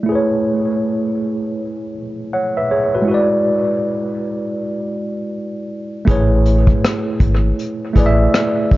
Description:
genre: lo-fi hip hop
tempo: 80 BPM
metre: 4/4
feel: swing 63% on 16ths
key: A major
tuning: A4 = 439 Hz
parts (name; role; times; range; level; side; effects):
- tine electric piano; accompaniment; 0.0-8.8 s; G#3 to F#5; -17 LUFS; equal; overdrive, fast stereo tremolo, cassette tape, low-pass filter, analog delay
- sub bass with octave; bass; 6.1-8.8 s; G#1 to A1; -15 LUFS; equal; none
- vintage brush drum kit; drums; 6.1-8.8 s; hi-hat, kick drum, rim click; -16 LUFS; equal; none
room: moderate spring reverb, RT60 2.5 s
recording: echo-heavy mix, cassette tape, nothing above 7.5 kHz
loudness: -15 LUFS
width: side -17 dB against mid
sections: 0.0-6.1 A section; 6.1-8.8 B section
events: filter sweep on tine electric piano 0.0-6.1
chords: 0.1 Amaj9; 3.1 E9/G#; 6.1 Amaj9

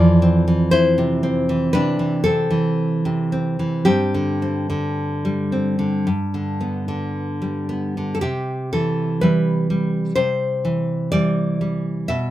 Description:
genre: romantic piece for solo classical guitar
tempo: 54-64 BPM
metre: 4/4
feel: rubato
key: C major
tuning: A4 = 439 Hz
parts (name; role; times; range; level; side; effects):
- nylon-string guitar; solo; 0.0-12.3 s; F2 to E5; -18 LUFS; equal; none
room: light reverb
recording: minimal, uncompressed stereo recording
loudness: -18 LUFS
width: side -14 dB against mid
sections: 0.0-8.2 A section; 8.2-12.3 B section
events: none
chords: 0.0 Fmaj7; 3.9 Gsus4; 6.1 G; 8.2 C

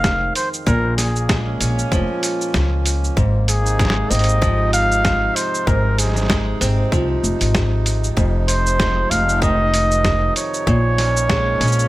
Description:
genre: folktronica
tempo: 96 BPM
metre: 4/4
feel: swing 56% on 16ths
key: Ab major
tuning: A4 = 441 Hz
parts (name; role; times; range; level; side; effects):
- breathy flugelhorn; melody; 0.0-11.9 s; Ab4 to F5; -20 LUFS; equal; digital delay
- picked old ladder-braced acoustic guitar; arpeggios; 0.0-11.9 s; F2 to Db4; -25 LUFS; equal; digital delay
- upright bass; bass; 0.0-11.8 s; F1 to Db2; -19 LUFS; equal; tube saturation
- electronic kick drum; drums; 0.0-11.4 s; none; -21 LUFS; equal; overdrive
- lo-fi sampler-style drum kit; drums; 0.0-11.9 s; cabasa, hi-hat, snare drum; -23 LUFS; equal; overdrive
- accordion; sustained chords; 1.2-11.9 s; C3 to Eb4; -28 LUFS; right 1 dB; none
room: little or no reverb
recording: none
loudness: -15 LUFS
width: side -17 dB against mid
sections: 0.0-11.9 A section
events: none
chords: 0.0 Fm7; 0.7 Bbm7; 3.2 Ab6; 8.2 Fm7; 10.7 Bbm7

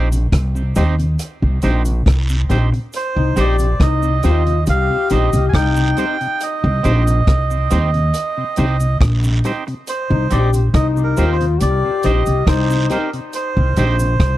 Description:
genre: roots reggae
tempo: 69 BPM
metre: 4/4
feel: straight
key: C minor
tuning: A4 = 438 Hz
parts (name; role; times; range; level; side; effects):
- twangy electric guitar; accompaniment; 0.0-14.0 s; C4 to C5; -27 LUFS; right 5 dB; tape echo
- upright bass; bass; 0.0-14.4 s; Bb1 to Eb2; -16 LUFS; equal; none
- mellow tonewheel organ; accompaniment; 0.1-14.1 s; C3 to Eb4; -25 LUFS; left 2 dB; slow rotary speaker
- vintage drum kit; drums; 0.1-14.4 s; hi-hat, kick drum, rim click; -18 LUFS; equal; tape echo
- cabasa and guiro; percussion; 0.1-14.2 s; none; -33 LUFS; right 2 dB; none
- melodica; melody; 3.0-14.4 s; Bb4 to Ab5; -22 LUFS; right 4 dB; tape echo
- clear trombone; second line; 3.2-13.1 s; Eb4 to G4; -22 LUFS; left 8 dB; tape echo
room: small room ambience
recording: dry, close 1970s-style studio recording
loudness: -14 LUFS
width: side -15 dB against mid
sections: 0.0-14.4 A section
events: none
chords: 0.0 Cm

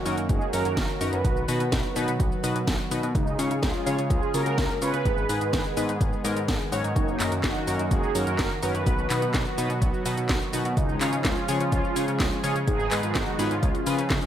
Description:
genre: italo disco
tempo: 126 BPM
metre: 4/4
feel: straight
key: F# major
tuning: A4 = 439 Hz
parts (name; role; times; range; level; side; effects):
- mellow synth brass; melody; 0.0-14.3 s; G#3 to B4; -30 LUFS; right 2 dB; chorus, vintage 12-bit sampler grit, digital delay
- warm analog pad; sustained chords; 0.0-14.3 s; C#3 to G#4; -32 LUFS; right 1 dB; chorus
- chorused polysynth; stabs; 0.1-14.0 s; G#2 to C#5; -31 LUFS; left 3 dB; none
- fat analog bass; bass; 0.1-14.2 s; F#1 to C#3; -30 LUFS; equal; none
- house drum kit; drums; 0.1-14.3 s; cabasa, handclaps, hi-hat, snare drum; -31 LUFS; equal; none
- electronic kick drum; drums; 0.3-14.2 s; none; -27 LUFS; equal; none
room: light reverb, digital ambience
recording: none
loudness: -23 LUFS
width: side -10 dB against mid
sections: 0.0-14.3 A section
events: none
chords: 0.0 F#6; 1.2 B; 3.2 C#; 5.1 G#m; 7.0 F#6; 8.9 B; 10.8 C#; 12.7 G#m; 13.6 C#

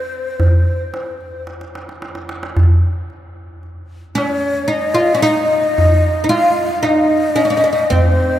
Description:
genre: Arabic maqam ensemble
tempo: 112 BPM (eighths)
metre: 10/8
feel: straight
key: unclear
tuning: A4 = 436 Hz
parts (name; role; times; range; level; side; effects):
- oud; melody; 0.0-8.4 s; C4 to F4; -16 LUFS; right 1 dB; none
- breathy mellow ney; second line; 0.0-8.4 s; C5 to F5; -18 LUFS; left 2 dB; none
- darbuka; percussion; 0.4-8.2 s; none; -16 LUFS; equal; none
room: wet cathedral reverb, RT60 5.5 s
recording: in a vast, echoing space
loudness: -13 LUFS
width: side -12 dB against mid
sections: 0.0-2.5 A section; 2.5-8.4 B section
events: drum fill 1.5-2.5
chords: none

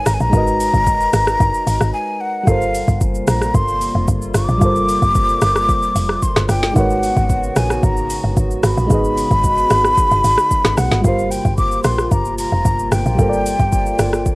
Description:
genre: amapiano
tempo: 112 BPM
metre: 4/4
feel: straight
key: unclear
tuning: A4 = 440 Hz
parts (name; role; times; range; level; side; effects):
- breathy jazz flute; melody; 0.0-14.3 s; F5 to D6; -18 LUFS; left 1 dB; cassette tape, analog delay
- mellow FM electric piano; accompaniment; 0.0-14.3 s; G3 to Eb5; -23 LUFS; right 1 dB; chorus, cassette tape
- woody log drum bass; bass; 0.0-14.3 s; F1 to Cb2; -19 LUFS; equal; none
- afro-pop drum kit; drums; 0.1-14.3 s; hi-hat, kick drum, rim click, shaker, snare drum; -19 LUFS; equal; overdrive, cassette tape
- hollow soft pad; sustained chords; 2.8-14.3 s; C3 to Gb4; -26 LUFS; equal; chorus, cassette tape
room: little or no reverb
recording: home recording on cassette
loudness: -13 LUFS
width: side -22 dB against mid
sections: 0.0-14.3 A section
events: break 1.9-2.5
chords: 0.0 Abm11; 2.5 Gm11; 6.8 Abm11; 11.0 Gm11

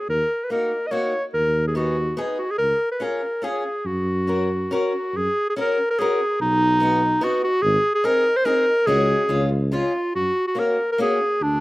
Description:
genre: alpine folk, alpine dance band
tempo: 143 BPM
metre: 3/4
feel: rubato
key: F# major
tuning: A4 = 441 Hz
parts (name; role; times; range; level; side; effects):
- warm clarinet; melody; 0.0-11.6 s; D4 to D#5; -20 LUFS; equal; none
- dark tuba; bass; 0.1-11.6 s; G#1 to F#2; -24 LUFS; equal; none
- picked old ladder-braced acoustic guitar; accompaniment; 0.5-11.2 s; G#3 to A#4; -26 LUFS; left 2 dB; slapback echo
room: little or no reverb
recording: recorded outdoors, with no room sound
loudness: -19 LUFS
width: side -19 dB against mid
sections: 0.0-5.1 A section; 5.1-11.6 B section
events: none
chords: 0.1 D#m; 1.4 G#m/D#; 2.6 C#; 3.9 F#; 6.4 B; 7.6 G#; 8.9 C#sus4; 9.3 C#; 10.1 F#

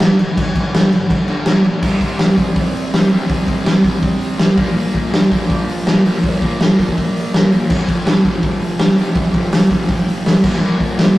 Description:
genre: garage rock duo or trio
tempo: 164 BPM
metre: 4/4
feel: straight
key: unclear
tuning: A4 = 440 Hz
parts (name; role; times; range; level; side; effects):
- fuzz guitar; riff; 0.0-11.2 s; F2 to C4; -21 LUFS; equal; distortion
- raw garage drum kit; drums; 0.0-11.1 s; crash cymbal, hi-hat, kick drum, snare drum; -13 LUFS; equal; none
room: light reverb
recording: rough rehearsal-room recording, tube saturation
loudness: -13 LUFS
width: side -17 dB against mid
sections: 0.0-1.8 A section; 1.8-11.2 B section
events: none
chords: 0.0 G5; 1.5 Bb5; 1.8 C5; 4.6 Bb5; 7.7 F5; 10.4 Bb5

